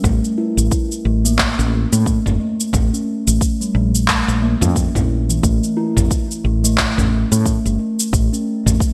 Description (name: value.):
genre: organic downtempo.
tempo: 89 BPM.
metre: 4/4.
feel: swing 59% on 16ths.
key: A phrygian dominant.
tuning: A4 = 440 Hz.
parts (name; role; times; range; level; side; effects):
steel tongue drum; arpeggios; 0.0-8.7 s; E3 to E4; -22 LUFS; equal; delay.
woody fretless electric bass; bass; 0.0-8.8 s; G1 to A2; -20 LUFS; equal; sidechain pumping.
electronic kick drum; drums; 0.0-8.9 s; none; -22 LUFS; equal; none.
organic electronic drum kit; drums; 0.0-8.9 s; handclaps, shaker, toms; -23 LUFS; equal; gated reverb.
room: moderate lush hall reverb, RT60 1.6 s.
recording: bright 1980s-style digital production.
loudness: -17 LUFS.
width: mono.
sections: 0.0-5.4 A section; 5.4-8.9 A section.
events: none.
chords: 0.0 N.C.; 4.1 Bb5; 5.4 A.